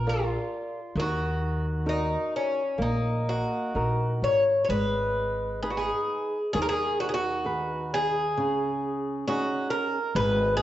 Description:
fado-style ballad; 62-69 BPM; 4/4; rubato; Eb minor, G# minor from 4.7 s; A4 = 440 Hz
Irish bouzouki; melody; 0.0-10.6 s; Db4 to Db5; -27 LUFS; equal
flamenco guitar; accompaniment; 0.0-10.6 s; C#3 to D5; -32 LUFS; equal
upright bass; bass; 0.0-10.6 s; Ab1 to Eb2; -31 LUFS; equal
moderate recital hall reverb, RT60 1.3 s; worn, warbling old tape, cassette tape, warbly pitch drift, nothing above 7.8 kHz; -25 LUFS; side -13 dB against mid
0.0-4.7 A section; 4.7-10.6 B section
0.0 Bb; 1.0 Ebm; 4.7 G#m; 8.4 C#sus2

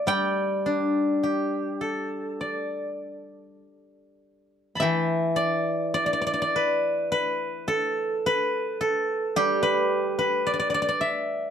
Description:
chinese traditional, Chinese solo plucked strings; 48-55 BPM; 4/4; rubato; G gong mode; A4 = 440 Hz
steel-string zither; solo; 0.0-11.5 s; E3 to B5; -23 LUFS; equal
light reverb; dark, warm production; -23 LUFS; side -8 dB against mid
0.0-4.8 A section; 4.8-11.5 B section

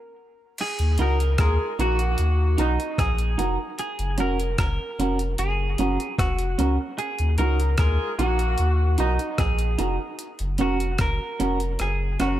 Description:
roots reggae; 75 BPM; 4/4; straight; Eb minor; A4 = 438 Hz
semi-hollow electric guitar; melody; 0.0-12.4 s; Eb4 to Bb4; -29 LUFS; right 1 dB; lush chorus, dub echo
breakbeat sampler-style drum kit; drums; 0.6-12.4 s; crash cymbal, hi-hat, kick drum, rim click; -27 LUFS; equal
warm sub bass; bass; 0.8-12.4 s; F1 to Eb2; -23 LUFS; equal
mellow horn section; second line; 1.0-9.1 s; Bb2 to Bb4; -32 LUFS; left 2 dB; dub echo
clean electric guitar; accompaniment; 1.0-12.4 s; Db4 to Bb4; -28 LUFS; right 2 dB; dub echo
light reverb; -21 LUFS; side -13 dB against mid
0.6-12.4 A section
stop 0.0-0.6
0.0 N.C.; 0.6 Ebm; 3.8 Gb; 7.0 Ebm; 10.2 Gb

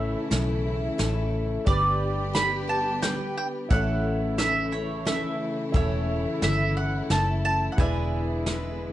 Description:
honky-tonk and classic country; 88 BPM; 3/4; straight; A4 = 440 Hz
mandolin; melody; 0.0-8.9 s; C#5 to B5; -28 LUFS; right 2 dB
bright grand piano; accompaniment; 0.0-8.9 s; D4 to E5; -37 LUFS; right 5 dB
picked steel-string acoustic guitar; accompaniment; 0.0-8.9 s; A2 to B4; -31 LUFS; left 3 dB
warm studio string section; sustained chords; 0.0-8.9 s; C#3 to G4; -33 LUFS; left 1 dB
vintage muted fingered electric bass; bass; 0.0-8.9 s; E1 to B1; -28 LUFS; equal
soft brush drum kit; drums; 0.3-8.6 s; hi-hat, kick drum, snare drum; -26 LUFS; equal
moderate studio reverb, RT60 0.5 s; nothing above 10.8 kHz; -23 LUFS; side -14 dB against mid
0.0-8.9 A section
0.0 A; 1.7 G; 3.7 A; 7.8 E7

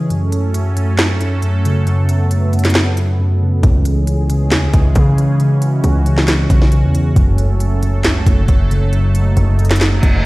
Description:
hip hop, trap; 136 BPM; 4/4; half-time; A4 = 440 Hz
muted felt-like synth keys; accompaniment; 0.0-10.3 s; F#2 to E3; -15 LUFS; equal; chorus, low-pass filter
sweeping resonant pad; sustained chords; 0.0-10.3 s; E3 to A4; -22 LUFS; right 2 dB; chorus
trap drum kit; drums; 0.1-10.1 s; handclaps, hi-hat, kick drum, snare drum; -15 LUFS; equal
hard-hitting 808-style bass; bass; 3.6-10.2 s; F#1 to C#3; -16 LUFS; equal
reverse cymbal; sound effects; 10.0-10.3 s; -21 LUFS; right 2 dB
light reverb; played on a big sound system in a bare room, large studio reverb; -12 LUFS; side -20 dB against mid
0.0-10.3 A section
break 0.0-3.6; drums muted 3.2-3.6; reverse cymbal 10.0-10.3
0.1 F#m; 3.6 C#m; 7.2 F#m

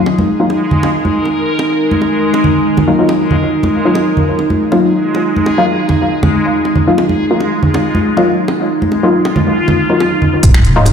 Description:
deep dubstep; 139 BPM; 4/4; half-time; Eb minor; A4 = 440 Hz
dark analog pad; sustained chords; 0.0-10.9 s; Eb4; -16 LUFS; right 4 dB; chorus
filtered dub chord stab; stabs; 0.0-10.9 s; Gb3 to F4; -15 LUFS; left 3 dB; chorus, vintage 12-bit sampler grit, dub echo
backwards swelling texture; texture; 0.0-10.9 s; F3 to Bb4; -18 LUFS; left 2 dB; built-in reverb
bongos and congas; percussion; 0.1-10.9 s; -16 LUFS; equal; dub echo
deep soft wobble bass; bass; 10.4-10.9 s; Eb1; -10 LUFS; equal; chorus
deep house drum kit; drums; 10.4-10.9 s; finger snaps, hi-hat; -19 LUFS; right 1 dB
electronic kick drum; drums; 10.4-10.5 s; -9 LUFS; equal
moderate lush hall reverb, RT60 1.9 s, digital ambience; played on a big sound system in a bare room, stone room reverb; -10 LUFS; side -7 dB against mid
0.0-10.4 A section
filter sweep on synth stab 0.0-10.4
0.0 Ebmadd9

